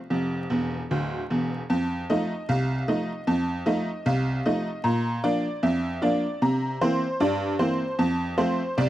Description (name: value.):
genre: ragtime piano.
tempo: 76 BPM.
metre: 2/4.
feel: straight.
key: F major.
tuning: A4 = 440 Hz.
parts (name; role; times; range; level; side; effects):
tack piano; solo; 0.0-8.9 s; D1 to Bb5; -23 LUFS; equal; none.
room: small room ambience.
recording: dry, close 1970s-style studio recording, vinyl crackle.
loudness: -23 LUFS.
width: side -14 dB against mid.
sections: 0.0-1.7 A section; 1.7-8.9 B section.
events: honky-tonk piano fill 0.5-1.7.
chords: 0.0 F5; 1.7 F7; 4.8 Bb; 6.4 C7; 8.0 F.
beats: | 0.10 0.90 | 1.69 2.48 | 3.27 4.06 | 4.84 5.63 | 6.42 7.21 | 8.00 8.78.